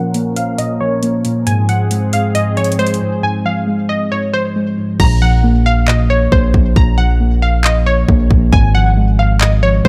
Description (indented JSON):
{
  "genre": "hip hop, trap",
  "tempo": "136 BPM",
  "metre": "4/4",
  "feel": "half-time",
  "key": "Bb minor",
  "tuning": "A4 = 439 Hz",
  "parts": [
    { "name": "glassy wavetable pluck", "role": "melody", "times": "0.0-9.9 s", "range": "C5 to Bb5", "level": "-21 LUFS", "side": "equal", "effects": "chorus, low-pass filter" },
    { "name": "muted felt-like synth keys", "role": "accompaniment", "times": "0.0-9.9 s", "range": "Ab2 to Bb3", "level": "-18 LUFS", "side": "equal", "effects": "chorus, low-pass filter" },
    { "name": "warm analog pad", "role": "sustained chords", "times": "0.0-5.0 s", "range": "Ab2 to Bb4", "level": "-26 LUFS", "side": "equal", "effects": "chorus, tremolo, low-pass filter" },
    { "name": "trap drum kit", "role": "drums", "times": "0.1-9.9 s", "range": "crash cymbal, handclaps, hi-hat, kick drum", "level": "-17 LUFS", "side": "equal", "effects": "none" },
    { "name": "distorted 808-style bass", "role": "bass", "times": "5.0-9.9 s", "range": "Ab1 to Bb1", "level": "-16 LUFS", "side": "equal", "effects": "distortion" }
  ],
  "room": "light reverb",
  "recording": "dark, warm production",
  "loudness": "-14 LUFS",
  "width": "mono",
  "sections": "0.0-5.0 A section; 5.0-9.9 B section",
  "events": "filter sweep 0.0-5.0; break 3.2-5.0; hi-hats muted 5.0-9.9",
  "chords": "0.0 Bbm; 1.5 Ab6; 5.0 Bbm; 8.5 Ab5"
}